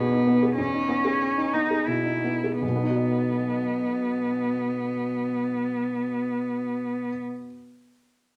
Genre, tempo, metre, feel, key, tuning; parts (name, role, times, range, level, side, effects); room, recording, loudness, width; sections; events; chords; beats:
neoclassical piano and strings; 80-99 BPM; 3/4; rubato; B major; A4 = 439 Hz
rich cello; second line; 0.0-7.2 s; B3 to E4; -27 LUFS; equal
felt-muted upright piano; accompaniment; 0.0-7.5 s; B1 to D#5; -31 LUFS; equal
moderate studio reverb, RT60 0.9 s; -26 LUFS; mono
0.0-2.6 A section; 2.6-7.1 B section
slowing down 0.0-2.6
0.0 Emaj7; 2.6 B
| 0.57 1.21 1.88 | 2.62 3.35 4.10 | 4.84 5.58 6.32